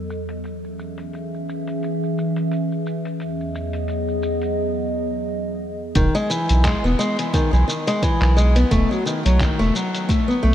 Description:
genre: folktronica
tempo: 87 BPM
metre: 4/4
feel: swing 56% on 16ths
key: E major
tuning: A4 = 441 Hz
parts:
  - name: warbly tape-like pad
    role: sustained chords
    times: 0.0-5.9 s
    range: E2 to E5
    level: -24 LUFS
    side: equal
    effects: chorus, built-in reverb
  - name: lo-fi sampler-style drum kit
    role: drums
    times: 0.1-10.4 s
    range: handclaps, hi-hat, shaker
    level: -29 LUFS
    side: left 1 dB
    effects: low-pass filter on hats, small room reverb, low-pass filter on perc, low-pass filter on snare
  - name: picked acoustic archtop guitar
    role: arpeggios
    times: 6.0-10.5 s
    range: D#3 to B3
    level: -20 LUFS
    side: left 1 dB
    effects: vintage 12-bit sampler grit, ping-pong delay
  - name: warm sub bass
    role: bass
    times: 6.0-10.5 s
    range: E1 to B1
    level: -17 LUFS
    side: equal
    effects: none
  - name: electronic kick drum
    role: drums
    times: 6.0-10.2 s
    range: none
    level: -22 LUFS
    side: equal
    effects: small room reverb
room: moderate huge ambient reverb, RT60 7.8 s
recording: dreamy mix soaked in reverb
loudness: -18 LUFS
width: side -11 dB against mid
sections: 0.0-6.0 A section; 6.0-10.5 B section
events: none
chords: 0.4 C#m/E; 3.2 G#m7/E; 6.0 Emaj7; 8.7 B7/E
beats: | 0.44 1.13 1.82 2.51 | 3.20 3.89 4.58 5.27 | 5.96 6.65 7.34 8.03 | 8.71 9.40 10.09

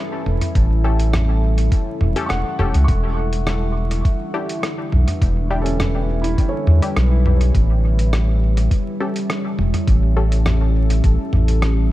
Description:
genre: ambient dub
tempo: 103 BPM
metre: 4/4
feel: straight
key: unclear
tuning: A4 = 439 Hz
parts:
  - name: deep dark ambient pad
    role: sustained chords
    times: 0.0-11.9 s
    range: D3 to E5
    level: -25 LUFS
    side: left 1 dB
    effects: chorus, built-in reverb
  - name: felt-muted upright piano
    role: arpeggios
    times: 0.0-8.3 s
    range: C#4 to C#6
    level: -30 LUFS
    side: right 1 dB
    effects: tape echo
  - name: soft dub sub bass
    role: bass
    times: 0.3-11.9 s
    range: E1 to E2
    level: -16 LUFS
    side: equal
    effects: none
  - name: lo-fi sampler-style drum kit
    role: drums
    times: 0.3-11.7 s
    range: hi-hat, rim click, toms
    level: -25 LUFS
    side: equal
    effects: small room ambience, dub echo
  - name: electronic kick drum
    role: drums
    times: 0.6-11.2 s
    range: none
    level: -17 LUFS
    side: equal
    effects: small room ambience
  - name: filtered dub chord stab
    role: stabs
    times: 0.8-10.3 s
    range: C#4 to A4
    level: -30 LUFS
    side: left 3 dB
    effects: chorus, cassette tape, dub echo
room: digital ambience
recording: vinyl crackle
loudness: -16 LUFS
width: side -16 dB against mid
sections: 0.0-11.9 A section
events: none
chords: 0.0 A7; 2.9 Em7; 7.5 A7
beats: | 0.56 1.14 1.72 2.30 | 2.88 3.47 4.05 4.63 | 5.21 5.80 6.38 6.96 | 7.54 8.13 8.71 9.29 | 9.88 10.46 11.04 11.62

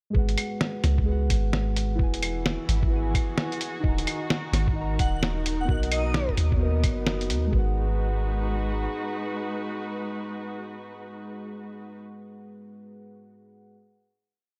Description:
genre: future garage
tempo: 130 BPM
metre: 4/4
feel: swing 62% on 16ths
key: G# minor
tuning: A4 = 440 Hz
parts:
  - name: muted felt-like synth keys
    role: accompaniment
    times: 0.1-13.7 s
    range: G#3 to A#5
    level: -36 LUFS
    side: equal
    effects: chorus, sidechain pumping, tape echo
  - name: soft 808-style bass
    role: bass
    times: 0.1-8.9 s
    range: D#1 to D#2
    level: -28 LUFS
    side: equal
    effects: sidechain pumping
  - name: electronic kick drum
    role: drums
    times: 0.1-7.6 s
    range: none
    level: -27 LUFS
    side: equal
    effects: studio reverb
  - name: lo-fi sampler-style drum kit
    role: drums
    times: 0.3-7.4 s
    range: claves, hi-hat, snare drum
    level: -31 LUFS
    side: equal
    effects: studio reverb
  - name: muted chamber string section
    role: sustained chords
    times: 2.0-12.0 s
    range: B2 to B4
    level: -37 LUFS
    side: equal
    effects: sidechain pumping
  - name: airy dreamy lead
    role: melody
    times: 5.0-6.3 s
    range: D#5 to F#5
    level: -37 LUFS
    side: equal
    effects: chorus, phaser, tape echo
room: light reverb, digital ambience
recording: none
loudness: -26 LUFS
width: mono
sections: 0.1-7.5 groove; 7.5-11.2 final chord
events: none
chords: 0.1 G#m7; 2.0 Eadd9; 3.8 D#m; 5.7 Bmaj7; 7.5 G#m7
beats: | 0.15 0.61 1.07 1.53 | 1.99 2.45 2.92 3.38 | 3.84 4.30 4.76 5.22 | 5.68 6.15 6.61 7.07 | 7.53 7.99 8.45 8.92 | 9.38 9.84 10.30 10.76

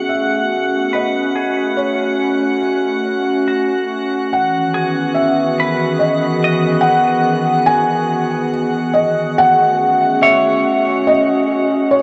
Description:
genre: ambient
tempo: 71 BPM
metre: 3/4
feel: straight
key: unclear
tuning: A4 = 441 Hz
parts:
  - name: felt-muted upright piano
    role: melody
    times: 0.0-12.0 s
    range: C#5 to G#5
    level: -18 LUFS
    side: equal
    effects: diffuse ambient delay
  - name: warbly tape-like pad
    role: sustained chords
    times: 0.0-12.0 s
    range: D#3 to G#4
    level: -20 LUFS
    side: equal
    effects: chorus, built-in reverb
  - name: semi-hollow electric guitar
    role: arpeggios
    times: 0.0-11.6 s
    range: F#4 to F#5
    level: -26 LUFS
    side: equal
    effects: diffuse ambient delay
  - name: drifting glass-harmonics texture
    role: texture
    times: 0.0-12.0 s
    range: F#5 to F#6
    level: -28 LUFS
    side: equal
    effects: chorus, built-in reverb
room: wet huge ambient reverb, RT60 8.0 s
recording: none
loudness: -16 LUFS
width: mono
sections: 0.0-12.0 A section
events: fade-in on clean electric guitar 0.0-12.0; fade-in on felt piano 0.0-12.0; fade-out on synth texture 0.0-12.0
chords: 0.0 F#m; 4.3 Emaj7; 9.4 F#m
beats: 0.09 0.93 | 1.78 2.62 3.47 | 4.31 5.16 6.00 | 6.85 7.69 8.54 | 9.38 10.23 11.07 | 11.92

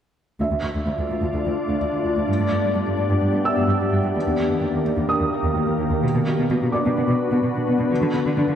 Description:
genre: cinematic, hybrid orchestral and electronic film score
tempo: 128 BPM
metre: 4/4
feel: straight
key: D dorian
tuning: A4 = 438 Hz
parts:
  - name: glassy FM pad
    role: sustained chords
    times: 0.9-8.6 s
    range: Eb3 to D5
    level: -22 LUFS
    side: left 1 dB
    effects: ensemble chorus, built-in reverb
  - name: rich symphonic cello section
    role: bass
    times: 0.4-8.5 s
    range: D2 to D3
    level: -23 LUFS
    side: equal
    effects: none
  - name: felt-muted upright piano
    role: texture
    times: 0.4-8.6 s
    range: D5 to E6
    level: -28 LUFS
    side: right 3 dB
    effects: tape echo
room: moderate scoring stage reverb, RT60 1.9 s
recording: none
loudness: -19 LUFS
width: side -9 dB against mid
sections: 0.4-8.6 A section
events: none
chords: 0.4 Dm; 2.3 G; 4.2 Eb; 6.0 Bm; 7.9 Dm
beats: | 0.40 0.87 1.34 1.81 | 2.27 2.74 3.21 3.68 | 4.15 4.62 5.09 5.56 | 6.03 6.49 6.96 7.43 | 7.90 8.37

